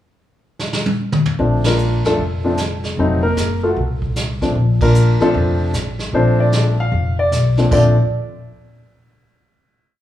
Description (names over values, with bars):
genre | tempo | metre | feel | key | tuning
jazz piano trio | 152 BPM | 4/4 | swing 64% on 8ths | Bb major | A4 = 439 Hz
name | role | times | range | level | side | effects
vintage brush drum kit | drums | 0.6-8.0 s | brushed snare drum, crash cymbal, hi-hat, kick drum, ride cymbal, snare drum, toms | -22 LUFS | right 1 dB | none
warm grand piano | melody | 1.4-8.0 s | Bb2 to F5 | -18 LUFS | left 1 dB | none
upright bass | bass | 1.4-8.0 s | F1 to F2 | -17 LUFS | left 1 dB | none
room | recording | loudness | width
wet large studio reverb, RT60 1.4 s | band playing live in one room, small room ambience | -14 LUFS | side -12 dB against mid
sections
0.0-1.4 pickup bar; 1.4-7.7 A section; 7.7-9.3 final chord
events
drum fill 0.6-1.4; band accent 1.6, 4.8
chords
0.0 N.C.; 1.4 Bbmaj9; 3.0 F(b9); 4.6 Bbmaj9; 7.7 Bb